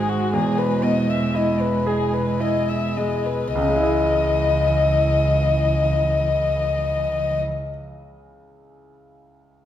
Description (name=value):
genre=neoclassical piano and strings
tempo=51-62 BPM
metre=3/4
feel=rubato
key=C# minor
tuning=A4 = 440 Hz
part: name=dark violin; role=melody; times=0.0-7.4 s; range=F#4 to E5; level=-22 LUFS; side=left 4 dB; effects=none
part: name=dark cello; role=second line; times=0.0-7.4 s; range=E3 to G#3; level=-28 LUFS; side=right 5 dB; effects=none
part: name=bright grand piano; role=accompaniment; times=0.0-9.7 s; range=C#2 to D#5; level=-26 LUFS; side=right 2 dB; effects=none
part: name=warbly tape-like pad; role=sustained chords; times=0.0-7.4 s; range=G#3 to D#5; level=-33 LUFS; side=right 1 dB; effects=chorus, built-in reverb
part: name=dark double bass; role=bass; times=0.0-7.4 s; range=E1 to C#2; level=-25 LUFS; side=equal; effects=none
room=wet recital hall reverb, RT60 1.9 s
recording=recorded in a church or concert hall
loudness=-18 LUFS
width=side -11 dB against mid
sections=0.0-3.6 A section; 3.6-7.0 B section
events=slowing down 0.0-3.6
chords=0.3 Emaj7; 3.6 C#madd9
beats=| 0.33 1.34 2.40 | 3.55 4.68 5.82